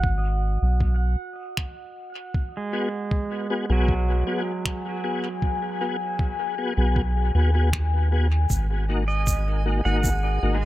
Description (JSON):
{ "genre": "ambient dub", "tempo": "78 BPM", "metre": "4/4", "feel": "straight", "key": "G# minor", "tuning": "A4 = 436 Hz", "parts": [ { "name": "deep dark ambient pad", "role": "sustained chords", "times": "0.0-10.7 s", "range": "G#4 to G#5", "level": "-34 LUFS", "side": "left 5 dB", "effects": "chorus, built-in reverb" }, { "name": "pedal steel guitar", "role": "arpeggios", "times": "0.0-10.7 s", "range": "F#3 to F#5", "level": "-31 LUFS", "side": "right 4 dB", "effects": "low-pass filter, tape echo" }, { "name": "soft dub sub bass", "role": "bass", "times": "0.0-10.7 s", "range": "G#1 to D#2", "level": "-21 LUFS", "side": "equal", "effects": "none" }, { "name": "electronic kick drum", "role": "drums", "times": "0.0-10.2 s", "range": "none", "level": "-25 LUFS", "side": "equal", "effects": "none" }, { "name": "finger snaps and shaker", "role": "drums", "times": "1.6-10.2 s", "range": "none", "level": "-33 LUFS", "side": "right 1 dB", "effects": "dub echo" }, { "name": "tonewheel organ", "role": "stabs", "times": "2.7-10.6 s", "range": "A#3 to G#4", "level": "-29 LUFS", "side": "left 3 dB", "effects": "chorus vibrato, fast rotary speaker, dub echo" }, { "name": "backwards swelling texture", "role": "texture", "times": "8.6-10.7 s", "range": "G#5", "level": "-37 LUFS", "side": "right 4 dB", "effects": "built-in reverb" } ], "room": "digital ambience", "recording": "echo-heavy mix", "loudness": "-22 LUFS", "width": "side -15 dB against mid", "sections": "0.0-10.7 A section", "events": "filter sweep on pedal steel guitar 0.0-10.7", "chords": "0.0 G#m7; 8.5 D#m/G#", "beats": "0.04 0.81 1.58 | 2.35 3.12 3.89 4.66 | 5.42 6.19 6.96 7.73 | 8.50 9.27 10.04" }